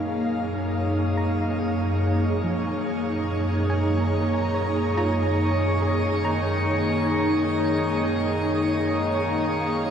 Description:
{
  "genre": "ambient",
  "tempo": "71 BPM",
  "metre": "3/4",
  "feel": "straight",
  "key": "F# major",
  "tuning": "A4 = 440 Hz",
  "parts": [
    { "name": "ethereal airy pad", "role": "sustained chords", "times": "0.0-9.9 s", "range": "F#2 to A#5", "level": "-22 LUFS", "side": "equal", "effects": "ensemble chorus, built-in reverb" },
    { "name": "soft round pluck", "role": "arpeggios", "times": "1.2-8.4 s", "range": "E#3 to A#5", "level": "-35 LUFS", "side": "equal", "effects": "none" },
    { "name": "hand-pumped harmonium", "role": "drone", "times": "6.2-9.9 s", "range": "D#3", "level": "-28 LUFS", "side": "equal", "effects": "stereo widening" }
  ],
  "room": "wet shimmer reverb, RT60 7.7 s",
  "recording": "dark, warm production",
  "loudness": "-21 LUFS",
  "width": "side -8 dB against mid",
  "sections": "0.0-9.9 A section",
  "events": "none",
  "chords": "0.0 F#maj13"
}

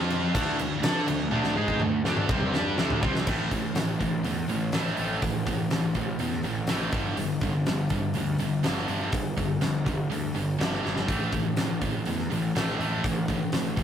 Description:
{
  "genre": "hard rock",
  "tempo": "123 BPM",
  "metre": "4/4",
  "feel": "straight",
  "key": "unclear",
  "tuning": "A4 = 441 Hz",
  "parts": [
    { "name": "distorted electric guitar", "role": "riff", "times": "0.0-3.3 s", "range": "C3 to D5", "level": "-32 LUFS", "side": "left 1 dB", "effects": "distortion" },
    { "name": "heavy high-gain guitar", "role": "riff", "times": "0.0-13.8 s", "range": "G2 to D5", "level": "-33 LUFS", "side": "left 6 dB", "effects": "distortion" },
    { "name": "scooped high-gain guitar", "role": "riff", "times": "0.0-13.8 s", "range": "G2 to D5", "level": "-29 LUFS", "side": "right 3 dB", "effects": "distortion" },
    { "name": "fuzz picked electric bass", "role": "bass", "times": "0.0-13.8 s", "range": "G1 to D3", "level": "-32 LUFS", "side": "equal", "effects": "overdrive" },
    { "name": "huge arena drum kit", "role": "drums", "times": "0.0-13.8 s", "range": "crash cymbal, hi-hat, kick drum, snare drum, toms", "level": "-29 LUFS", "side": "left 1 dB", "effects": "none" }
  ],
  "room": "moderate studio ambience, RT60 0.5 s",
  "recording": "rough rehearsal-room recording",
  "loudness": "-24 LUFS",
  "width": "side -9 dB against mid",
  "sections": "0.0-3.3 A section; 3.3-13.8 B section",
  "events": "drum fill 1.3-3.3, 10.8",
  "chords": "0.4 D5; 3.3 A5; 6.9 G5; 11.1 A5"
}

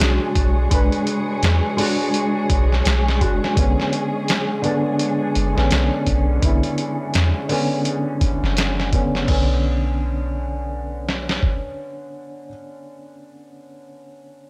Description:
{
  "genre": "trip hop",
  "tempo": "84 BPM",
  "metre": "4/4",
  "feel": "swing 59% on 16ths",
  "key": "B dorian",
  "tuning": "A4 = 439 Hz",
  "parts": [
    { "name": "felt-muted upright piano", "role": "accompaniment", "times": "0.0-14.5 s", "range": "D3 to B4", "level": "-26 LUFS", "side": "equal", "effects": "harmonic tremolo, tape echo" },
    { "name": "dark studio string section", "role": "sustained chords", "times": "0.0-9.3 s", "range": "G#3 to G#4", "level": "-29 LUFS", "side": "equal", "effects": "low-pass filter" },
    { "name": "soft 808-style bass", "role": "bass", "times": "0.0-11.4 s", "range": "F#1 to E2", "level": "-22 LUFS", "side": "equal", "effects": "none" },
    { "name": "trip hop sampler-style drum kit", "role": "drums", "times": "0.0-11.6 s", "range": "crash cymbal, hi-hat, kick drum, snare drum", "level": "-24 LUFS", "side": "equal", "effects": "none" },
    { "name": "wind-like tuned noise texture", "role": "texture", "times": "0.0-9.3 s", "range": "C#5", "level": "-38 LUFS", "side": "equal", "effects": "built-in reverb" }
  ],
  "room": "little or no reverb",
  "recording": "none",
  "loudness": "-20 LUFS",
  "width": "mono",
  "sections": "0.0-9.3 A section; 9.3-12.1 B section",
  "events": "filter sweep on string section 0.0-9.3",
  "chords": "0.0 E9 (rootless); 3.6 Bmadd9"
}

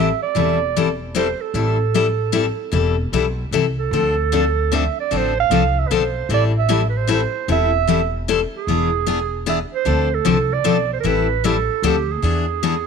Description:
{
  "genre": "acoustic string swing (jazz manouche)",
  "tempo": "152 BPM",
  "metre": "3/4",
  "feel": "swing 63% on 8ths",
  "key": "A minor",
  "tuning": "A4 = 440 Hz",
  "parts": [
    { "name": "warm clarinet", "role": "melody", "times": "0.0-12.9 s", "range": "G4 to F5", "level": "-21 LUFS", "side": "right 13 dB", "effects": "none" },
    { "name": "picked steel-string acoustic guitar", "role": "accompaniment", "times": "0.0-12.7 s", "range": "D3 to A4", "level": "-20 LUFS", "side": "left 9 dB", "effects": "none" },
    { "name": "upright bass", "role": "bass", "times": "0.0-12.9 s", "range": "E1 to E2", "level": "-22 LUFS", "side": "equal", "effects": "none" }
  ],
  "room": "light reverb",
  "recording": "1960s-style stereo with parts hard left and right",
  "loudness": "-16 LUFS",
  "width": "side -6 dB against mid",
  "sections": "0.0-12.9 A section",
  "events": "none",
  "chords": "0.0 Am7; 3.9 Dm7; 6.3 Am7; 8.7 E7; 9.9 Dm7; 11.0 Am9; 11.8 Dm7; 12.2 E7"
}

